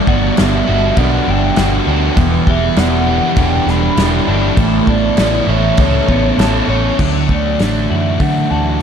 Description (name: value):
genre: rock, shoegaze and dream pop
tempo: 100 BPM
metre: 4/4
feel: straight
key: D major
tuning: A4 = 441 Hz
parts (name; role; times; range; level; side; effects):
- crunchy overdriven guitar; riff; 0.0-8.8 s; D3 to C#5; -18 LUFS; right 9 dB; reverse reverb
- thick fuzz guitar; riff; 0.0-8.8 s; E2 to F#4; -19 LUFS; left 9 dB; distortion, lush chorus
- hollow clarinet-like synth lead; melody; 0.1-8.8 s; C#5 to B5; -20 LUFS; right 1 dB; chorus, analog delay
- twelve-string electric guitar; arpeggios; 0.1-8.8 s; E3 to A4; -24 LUFS; left 6 dB; ensemble chorus, analog delay
- vintage muted picked electric bass; bass; 0.1-8.8 s; E1 to D3; -17 LUFS; equal; none
- loose indie drum kit; drums; 0.1-8.3 s; crash cymbal, hi-hat, kick drum, snare drum; -18 LUFS; equal; none
room: moderate cathedral reverb, RT60 3.9 s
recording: dreamy mix soaked in reverb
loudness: -11 LUFS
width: side -7 dB against mid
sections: 0.0-7.0 A section; 7.0-8.8 B section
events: none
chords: 0.0 Gmaj7; 2.2 Em7; 4.6 Aadd9; 7.0 Dadd9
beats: 0.38 0.98 1.58 | 2.18 2.78 3.38 3.98 | 4.59 5.19 5.79 6.39 | 7.00 7.60 8.21 8.81